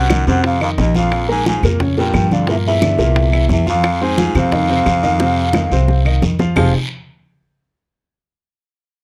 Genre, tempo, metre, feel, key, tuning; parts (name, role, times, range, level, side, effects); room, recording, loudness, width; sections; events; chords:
Afro-Cuban jazz; 176 BPM; 4/4; straight; F minor; A4 = 440 Hz
breathy mellow concert flute; melody; 0.0-6.7 s; Eb5 to Ab5; -22 LUFS; equal
edgy baritone saxophone; second line; 0.0-6.7 s; Eb2 to F3; -26 LUFS; equal
warm upright piano; accompaniment; 0.0-6.7 s; Bb2 to C6; -22 LUFS; equal
upright bass; bass; 0.0-6.7 s; F1 to G2; -20 LUFS; equal
bongos; percussion; 0.1-6.6 s; -23 LUFS; equal
claves; percussion; 0.1-6.6 s; -31 LUFS; equal
congas; percussion; 0.1-6.6 s; -24 LUFS; equal
guiro; percussion; 0.1-6.6 s; -33 LUFS; equal
little or no reverb; dry, close 1970s-style studio recording; -15 LUFS; mono
0.0-6.6 A section; 6.6-7.9 B section
drum fill 5.2-6.6
0.4 F5; 1.1 Bbm; 2.5 Gm; 3.2 C7; 3.8 Fm7; 6.6 Fm9